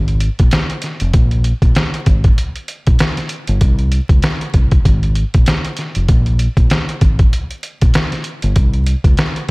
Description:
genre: hip hop, boom-bap hip-hop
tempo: 97 BPM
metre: 4/4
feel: swing 58% on 16ths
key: unclear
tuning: A4 = 440 Hz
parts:
  - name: fingered electric bass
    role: bass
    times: 0.0-9.1 s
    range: F1 to Db2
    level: -15 LUFS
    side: equal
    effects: none
  - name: trip hop sampler-style drum kit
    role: drums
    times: 0.1-9.5 s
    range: hi-hat, kick drum, snare drum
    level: -13 LUFS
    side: equal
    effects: none
room: little or no reverb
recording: vinyl crackle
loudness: -12 LUFS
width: side -27 dB against mid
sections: 0.0-9.5 A section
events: none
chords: none

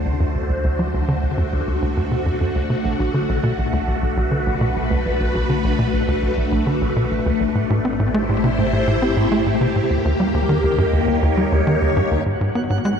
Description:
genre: ambient, sequencer-driven space music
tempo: 102 BPM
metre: 4/4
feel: straight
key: unclear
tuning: A4 = 440 Hz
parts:
  - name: phased string machine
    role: sustained chords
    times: 0.0-13.0 s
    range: G#3 to C#5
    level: -21 LUFS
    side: left 1 dB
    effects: ensemble chorus, phaser
  - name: warm sub bass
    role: bass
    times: 0.0-13.0 s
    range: G#1 to D#2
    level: -27 LUFS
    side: equal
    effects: none
  - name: tight sequencer bass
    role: riff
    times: 0.1-12.9 s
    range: B1 to C4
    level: -20 LUFS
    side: equal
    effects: ping-pong delay
  - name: twinkling granular texture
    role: texture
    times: 12.3-13.0 s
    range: F#4 to F#5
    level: -30 LUFS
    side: right 5 dB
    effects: built-in reverb
room: moderate huge ambient reverb, RT60 8.6 s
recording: dark, warm production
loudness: -17 LUFS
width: side -7 dB against mid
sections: 0.0-12.3 A section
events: fade-in on string machine 0.0-12.3; filter sweep on analog synth bass 0.0-12.3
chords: 0.0 D7; 2.9 Bm7; 7.6 Am7; 9.9 D#7; 12.3 G#m7

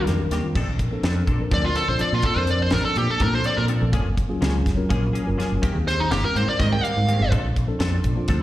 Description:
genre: electric jazz fusion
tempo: 248 BPM (eighths)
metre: 7/8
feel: straight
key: Bb major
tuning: A4 = 443 Hz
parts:
  - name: smooth overdriven lead guitar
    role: melody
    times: 0.0-7.3 s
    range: Eb4 to G5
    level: -23 LUFS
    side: equal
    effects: slapback echo, plate reverb
  - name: mellow tine electric piano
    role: accompaniment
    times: 0.0-8.4 s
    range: Eb3 to Bb4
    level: -28 LUFS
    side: left 1 dB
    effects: medium stereo tremolo
  - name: glassy FM pad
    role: sustained chords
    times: 0.0-0.5, 7.7-8.4 s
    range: Eb3 to C6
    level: -36 LUFS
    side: left 6 dB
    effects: ensemble chorus, built-in reverb
  - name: semi-hollow electric guitar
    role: stabs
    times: 0.1-8.4 s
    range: Eb3 to A4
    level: -31 LUFS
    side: left 1 dB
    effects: analog chorus, plate reverb, slapback echo
  - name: mellow fretless electric bass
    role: bass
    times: 0.1-8.4 s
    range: Gb1 to Bb2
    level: -23 LUFS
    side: equal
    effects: ensemble chorus
  - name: crisp fusion drum kit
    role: drums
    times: 0.1-8.4 s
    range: crash cymbal, hi-hat, kick drum, snare drum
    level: -26 LUFS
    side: equal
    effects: none
room: light reverb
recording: live gig heard through the venue's PA, recital hall reverb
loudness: -19 LUFS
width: side -14 dB against mid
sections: 0.6-8.4 A section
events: lead electric guitar solo 0.6-8.4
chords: 0.0 F9sus4; 0.6 Bbmaj9; 3.9 Gbmaj9; 5.6 Abmaj9; 7.3 Bbmaj9

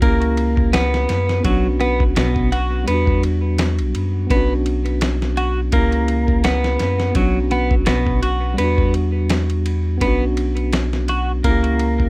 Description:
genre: trip hop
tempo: 84 BPM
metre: 4/4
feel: swing 55% on 16ths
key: B harmonic minor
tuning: A4 = 440 Hz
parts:
  - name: tine electric piano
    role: accompaniment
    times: 0.0-12.1 s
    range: G3 to G4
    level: -23 LUFS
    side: right 1 dB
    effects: tremolo, low-pass filter, tape echo
  - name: twelve-string electric guitar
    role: arpeggios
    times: 0.0-12.1 s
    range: B2 to F#4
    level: -20 LUFS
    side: right 1 dB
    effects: tape echo
  - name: soft dub sub bass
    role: bass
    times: 0.0-12.1 s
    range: B1 to F#2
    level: -19 LUFS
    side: equal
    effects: none
  - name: dusty soul sampler-style drum kit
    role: drums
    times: 0.0-12.1 s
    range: kick drum, ride cymbal, snare drum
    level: -20 LUFS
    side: equal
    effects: none
room: little or no reverb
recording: rough home demo mix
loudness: -15 LUFS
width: side -25 dB against mid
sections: 0.0-12.1 A section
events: filter sweep on tine electric piano 0.0-12.1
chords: 0.0 C#m7b5; 1.4 Bmadd9; 2.9 Em7; 4.3 Bmadd9; 5.7 C#m7b5; 7.2 Bmadd9; 8.6 Em7; 10.0 Bmadd9; 11.4 C#dim

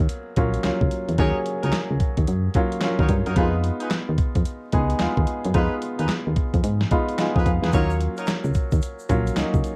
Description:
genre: R&B, new jack swing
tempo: 110 BPM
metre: 4/4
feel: swing 63% on 16ths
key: Eb minor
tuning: A4 = 440 Hz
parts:
  - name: warm grand piano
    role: accompaniment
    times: 0.0-9.8 s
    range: Gb3 to Cb6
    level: -28 LUFS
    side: equal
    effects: none
  - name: solid FM bass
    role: bass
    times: 0.0-9.6 s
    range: Bb1 to Ab2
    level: -26 LUFS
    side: equal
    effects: none
  - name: clean 12-bit digital drum machine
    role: drums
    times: 0.1-9.8 s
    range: handclaps, hi-hat, kick drum, snare drum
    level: -26 LUFS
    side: equal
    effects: none
  - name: warm horn section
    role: stabs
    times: 1.2-8.3 s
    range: Eb4 to Db5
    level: -32 LUFS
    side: equal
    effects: slapback echo
  - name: egg shaker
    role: percussion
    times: 7.7-9.8 s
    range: none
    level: -50 LUFS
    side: equal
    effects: none
room: light reverb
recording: dark, warm production, vinyl crackle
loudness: -23 LUFS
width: mono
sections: 0.0-9.8 A section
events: grand piano fill 6.6-7.7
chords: 0.0 Ebm7; 3.4 Fm7b5; 7.7 Ebm7

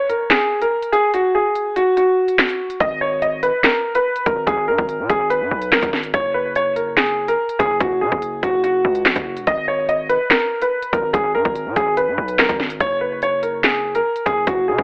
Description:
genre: hip hop, drill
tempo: 144 BPM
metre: 4/4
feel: half-time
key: G# minor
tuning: A4 = 440 Hz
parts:
  - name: dark baby grand piano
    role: melody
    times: 0.0-14.8 s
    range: F#4 to D#5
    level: -20 LUFS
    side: equal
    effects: none
  - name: drill drum kit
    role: drums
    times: 0.1-14.8 s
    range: handclaps, hi-hat, kick drum, snare drum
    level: -21 LUFS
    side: equal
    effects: none
  - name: distorted 808-style bass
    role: bass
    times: 2.8-14.8 s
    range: E1 to C#3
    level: -30 LUFS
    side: equal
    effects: distortion
room: light reverb, digital ambience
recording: telephone sound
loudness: -19 LUFS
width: mono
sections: 0.0-14.8 A section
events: break 0.0-2.8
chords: 0.0 N.C.; 2.8 G#madd9; 6.1 F#5; 9.5 G#madd9; 12.8 F#5

